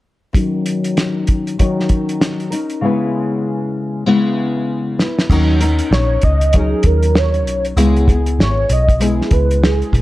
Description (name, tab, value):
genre	indie pop, bedroom pop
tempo	97 BPM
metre	4/4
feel	swing 60% on 16ths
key	unclear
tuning	A4 = 441 Hz
part	nylon-string guitar	accompaniment	0.3-10.0 s	C#3 to B4	-18 LUFS	left 2 dB	analog chorus, vibrato effect, low-pass filter
part	cloth-damped thuddy drum kit	drums	0.3-10.0 s	crash cymbal, hi-hat, kick drum, snare drum	-16 LUFS	equal	none
part	vintage muted picked electric bass	bass	5.3-10.0 s	G#1 to D#2	-15 LUFS	equal	none
part	warm velvety synth lead	melody	5.9-10.0 s	G#4 to D#5	-19 LUFS	right 2 dB	wide subtle chorus, slapback echo
room	light reverb, studio reverb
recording	dark, warm production, lossy compression artefacts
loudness	-13 LUFS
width	side -17 dB against mid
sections	0.3-5.3 A section; 5.3-10.0 B section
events	filter sweep on nylon-string guitar 0.3-5.3; drum fill 2.8-5.3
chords	0.3 D#m7; 2.8 C#m7; 5.3 D#m7; 7.8 C#m7